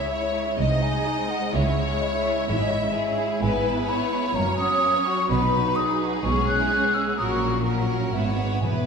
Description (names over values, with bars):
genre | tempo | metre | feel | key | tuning
quick classical-period movement for symphony orchestra | 127 BPM | 4/4 | rubato | unclear | A4 = 440 Hz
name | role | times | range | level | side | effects
clear symphonic violin section | melody | 0.0-8.9 s | F#4 to E5 | -31 LUFS | left 4 dB | none
clear studio violin section | second line | 0.0-8.9 s | G#3 to D#5 | -30 LUFS | left 1 dB | none
mellow hollow concert flute | second line | 0.0-8.9 s | C#5 to F#6 | -26 LUFS | left 1 dB | none
warm studio viola section | accompaniment | 0.0-8.9 s | F#3 to E4 | -28 LUFS | right 2 dB | none
clear studio double bass section | bass | 0.6-8.9 s | E1 to C#2 | -29 LUFS | right 2 dB | none
rich studio cello section | bass | 0.6-8.9 s | B#1 to B2 | -29 LUFS | right 1 dB | none
room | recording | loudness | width
wet scoring stage reverb, RT60 1.8 s | heard from further back in the room | -21 LUFS | side -6 dB against mid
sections
0.0-8.9 A section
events
none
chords
0.0 C#m; 0.6 G#/B#; 1.5 C#m; 3.4 E/G#; 4.4 F#; 5.3 B; 6.3 C#m7/B; 7.2 F#/A#; 8.1 E/G#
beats
0.11 0.59 1.07 | 1.54 2.02 2.49 2.96 | 3.43 3.89 4.37 4.83 | 5.30 5.78 6.25 6.72 | 7.19 7.67 8.15 8.64